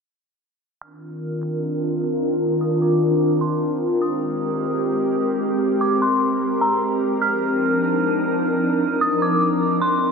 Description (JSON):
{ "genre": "hip hop", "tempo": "150 BPM", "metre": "4/4", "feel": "half-time", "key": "C minor", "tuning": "A4 = 440 Hz", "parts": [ { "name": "dark detuned synth bell", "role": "melody", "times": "0.8-10.0 s", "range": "Bb5 to F6", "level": "-24 LUFS", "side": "equal", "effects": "chorus, phaser, low-pass filter, tape echo" }, { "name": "glassy FM pad", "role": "sustained chords", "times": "1.1-10.1 s", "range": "Eb3 to Bb4", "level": "-19 LUFS", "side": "equal", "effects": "ensemble chorus, built-in reverb, low-pass filter" } ], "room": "wet lush hall reverb, RT60 2.4 s", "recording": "none", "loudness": "-18 LUFS", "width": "side -5 dB against mid", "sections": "0.8-10.1 A section", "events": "filter sweep 0.8-10.1", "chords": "0.8 Cm11; 4.0 Abmaj9; 7.2 Cm11" }